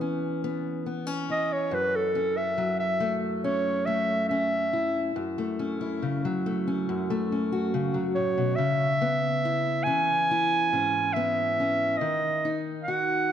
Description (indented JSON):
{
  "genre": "acoustic folk duo or small band",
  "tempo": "70 BPM",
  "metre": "4/4",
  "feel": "straight",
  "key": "unclear",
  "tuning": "A4 = 441 Hz",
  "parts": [
    { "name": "fingerpicked steel-string acoustic guitar", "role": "accompaniment", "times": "0.0-13.3 s", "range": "F#2 to F#4", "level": "-28 LUFS", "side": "left 1 dB", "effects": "none" },
    { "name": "warm clarinet", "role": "melody", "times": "1.3-13.3 s", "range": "A4 to G#5", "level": "-25 LUFS", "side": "right 1 dB", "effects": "none" }
  ],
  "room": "wet scoring stage reverb, RT60 1.9 s",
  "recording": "dark, warm production",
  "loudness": "-24 LUFS",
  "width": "side -9 dB against mid",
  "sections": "0.0-5.2 A section; 5.2-8.6 B section; 8.6-13.3 C section",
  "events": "clarinet solo 0.0-5.2",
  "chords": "0.0 C#m7; 1.7 F#m7; 8.6 C#m7; 12.0 B/D# (rootless)"
}